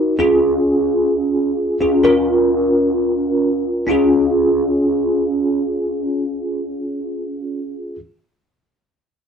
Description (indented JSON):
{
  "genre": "pop",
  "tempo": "free time",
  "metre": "none",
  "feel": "none",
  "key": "Db major",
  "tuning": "A4 = 444 Hz",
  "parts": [
    { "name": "bell-like tine electric piano", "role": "solo", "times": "0.0-8.0 s", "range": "Db4 to Bb4", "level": "-15 LUFS", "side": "equal", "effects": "ensemble chorus" }
  ],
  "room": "moderate studio reverb, RT60 0.6 s",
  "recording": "dry, gritty hardware recording, transformer saturation",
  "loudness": "-15 LUFS",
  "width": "side -7 dB against mid",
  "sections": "0.0-3.9 A section; 3.9-7.6 B section",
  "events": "none",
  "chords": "0.2 Db; 2.0 Bbm; 3.9 Db"
}